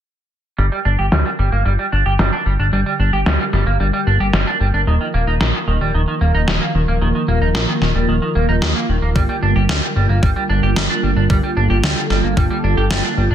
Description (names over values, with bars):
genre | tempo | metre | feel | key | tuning
synthwave | 112 BPM | 4/4 | straight | G minor | A4 = 439 Hz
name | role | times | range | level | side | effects
warm analog pad | sustained chords | 0.6-13.3 s | D3 to Bb4 | -22 LUFS | right 1 dB | chorus
semi-hollow electric guitar | riff | 0.6-13.3 s | Eb3 to G4 | -21 LUFS | right 4 dB | analog chorus, low-pass filter, ping-pong delay
fat analog bass | bass | 0.6-13.3 s | Eb1 to Eb2 | -17 LUFS | equal | tube saturation
electronic snare drum | drums | 1.1-13.0 s | none | -20 LUFS | equal | gated reverb, gated reverb snare, overdrive, low-pass filter on snare, low-pass filter on room
electronic kick drum | drums | 9.2-12.5 s | none | -17 LUFS | left 1 dB | overdrive
room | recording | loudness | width
light reverb | dense, heavily limited modern master | -14 LUFS | side -10 dB against mid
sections
0.6-13.3 A section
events
filter sweep on drum 0.6-13.3; filter sweep on analog synth bass 0.6-13.3; filter sweep on analog synth pad 0.6-13.3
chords
0.6 Gm7; 4.9 Ebsus2; 9.2 Gm7